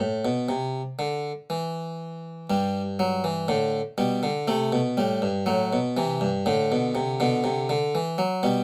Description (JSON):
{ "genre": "classical, baroque-style 4-part fugue for harpsichord", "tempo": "60 BPM", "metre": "4/4", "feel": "straight", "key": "unclear", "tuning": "A4 = 440 Hz", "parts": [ { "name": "harpsichord", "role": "solo", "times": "0.0-8.6 s", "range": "G2 to A3", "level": "-26 LUFS", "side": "equal", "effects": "none" } ], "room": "light reverb", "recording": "close, detailed microphones", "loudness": "-26 LUFS", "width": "mono", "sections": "0.0-8.6 A section", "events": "none", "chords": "0.0 N.C.; 2.5 G; 4.5 Am7; 6.5 D7/A", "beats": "0.52 1.51 | 2.50 3.49 4.48 5.47 | 6.46 7.46 8.45" }